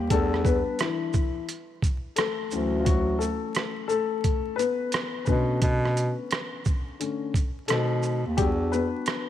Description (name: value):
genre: hip hop, jazz-hop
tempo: 87 BPM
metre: 4/4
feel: swing 63% on 16ths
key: D major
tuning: A4 = 440 Hz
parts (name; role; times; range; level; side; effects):
- dark concert grand piano; accompaniment; 0.0-9.3 s; D3 to B4; -28 LUFS; left 6 dB; none
- mellow bass clarinet; bass; 0.0-8.9 s; D2 to B2; -25 LUFS; right 1 dB; none
- boom bap sampler-style drum kit; drums; 0.1-9.3 s; hi-hat, kick drum, rim click, shaker; -27 LUFS; right 1 dB; none
room: light reverb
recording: 1960s-style stereo, vinyl crackle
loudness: -24 LUFS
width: side -11 dB against mid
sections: 0.0-9.3 A section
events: grand piano solo 0.0-9.3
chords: 0.1 A9sus4/E; 2.5 Dmaj9; 5.3 Bm9; 7.7 B7b9; 8.4 E7(no3)